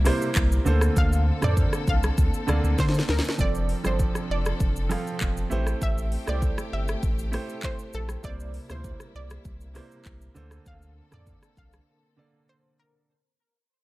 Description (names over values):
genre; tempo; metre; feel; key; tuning
afrobeats; 99 BPM; 4/4; straight; unclear; A4 = 441 Hz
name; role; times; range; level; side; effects
warm grand piano; accompaniment; 0.0-13.1 s; C3 to F5; -31 LUFS; right 3 dB; none
warm studio string section; sustained chords; 0.0-13.1 s; C3 to A4; -36 LUFS; left 2 dB; none
saturated sub bass; bass; 0.0-11.8 s; F1 to D3; -25 LUFS; equal; none
afro-pop drum kit; drums; 0.1-11.9 s; handclaps, hi-hat, kick drum, rim click, shaker, snare drum, toms; -27 LUFS; equal; none
analog pluck; melody; 1.0-12.9 s; A4 to F5; -35 LUFS; right 1 dB; chorus, digital delay
room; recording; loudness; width
digital ambience; none; -22 LUFS; side -18 dB against mid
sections
0.0-13.1 A section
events
fade-out 0.0-13.1; drum fill 2.8-3.4; break 11.9-13.1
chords
0.0 C7; 0.7 Bbmaj7; 3.4 F6; 5.5 Am7; 8.2 C7; 10.4 Bbmaj7